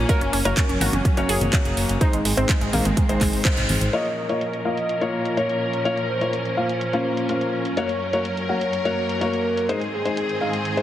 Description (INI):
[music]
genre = progressive house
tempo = 125 BPM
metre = 4/4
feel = straight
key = Bb minor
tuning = A4 = 440 Hz
[part]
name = rich studio string section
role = sustained chords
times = 0.0-10.8 s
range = Gb2 to Bb4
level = -28 LUFS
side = equal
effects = sidechain pumping, low-pass filter
[part]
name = felt-muted upright piano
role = stabs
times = 0.0-10.8 s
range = Ab3 to Gb5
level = -25 LUFS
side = left 2 dB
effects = sidechain pumping, low-pass filter, tape echo
[part]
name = dark detuned saw bass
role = bass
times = 0.0-3.9 s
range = Gb1 to Bb1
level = -25 LUFS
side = equal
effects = sidechain pumping
[part]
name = glassy wavetable pluck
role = arpeggios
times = 0.1-3.8 s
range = Ab3 to Bb4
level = -26 LUFS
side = right 2 dB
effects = chorus, sidechain pumping, tape echo
[part]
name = electronic kick drum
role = drums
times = 0.1-3.5 s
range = none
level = -21 LUFS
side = equal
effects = none
[part]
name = house drum kit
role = drums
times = 0.1-10.8 s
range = handclaps, hi-hat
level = -28 LUFS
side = right 1 dB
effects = sidechain pumping on hats, low-pass filter on hats, low-pass filter on snare
[part]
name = congas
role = percussion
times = 0.8-3.8 s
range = none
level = -30 LUFS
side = left 1 dB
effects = sidechain pumping on perc
[part]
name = warm velvety synth lead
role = melody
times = 3.9-10.8 s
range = Ab4 to Eb5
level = -27 LUFS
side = equal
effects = chorus, sidechain pumping, tape echo
[sound]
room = moderate lush hall reverb, RT60 2.4 s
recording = heavily compressed radio sound, multiband compression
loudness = -20 LUFS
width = side -12 dB against mid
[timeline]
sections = 0.0-3.9 A section; 3.9-10.8 B section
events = filter sweep on string section 0.0-3.9, 3.9-10.8; band accent 3.5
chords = 0.1 Gb; 2.0 Ab; 3.9 Bbm; 7.8 Gb; 9.7 Ab